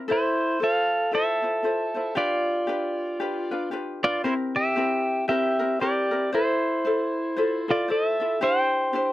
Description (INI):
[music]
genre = Hawaiian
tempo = 115 BPM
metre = 4/4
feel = swing 60% on 8ths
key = F major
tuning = A4 = 440 Hz
[part]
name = ukulele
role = accompaniment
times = 0.0-9.1 s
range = C4 to C5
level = -27 LUFS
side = left 2 dB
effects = none
[part]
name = pedal steel guitar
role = melody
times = 0.1-9.1 s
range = E4 to G5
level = -23 LUFS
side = equal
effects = none
[sound]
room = light reverb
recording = dry, close 1970s-style studio recording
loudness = -22 LUFS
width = side -15 dB against mid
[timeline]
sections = 0.0-8.4 A section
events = none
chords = 0.1 Fmaj7; 2.2 G7; 4.2 C7; 6.3 Fmaj7; 8.4 Cadd9